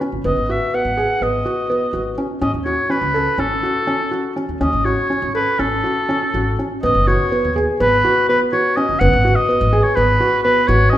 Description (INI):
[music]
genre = contemporary instrumental, chamber music in an uneven meter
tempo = 248 BPM (eighths)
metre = 9/8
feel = straight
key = G# phrygian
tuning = A4 = 440 Hz
[part]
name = felt-muted upright piano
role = arpeggios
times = 0.0-11.0 s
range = B3 to A4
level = -19 LUFS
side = right 1 dB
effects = none
[part]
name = upright bass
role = bass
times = 0.1-10.9 s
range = F#1 to D#2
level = -21 LUFS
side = equal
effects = none
[part]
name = clear oboe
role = melody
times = 0.3-11.0 s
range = A4 to F#5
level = -18 LUFS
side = equal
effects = none
[sound]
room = wet recital hall reverb, RT60 1.6 s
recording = minimal, uncompressed stereo recording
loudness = -15 LUFS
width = side -12 dB against mid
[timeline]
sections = 0.0-6.8 A section; 6.8-11.0 A section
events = none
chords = 0.0 G#m7; 2.4 F#m/G#; 6.8 G#m7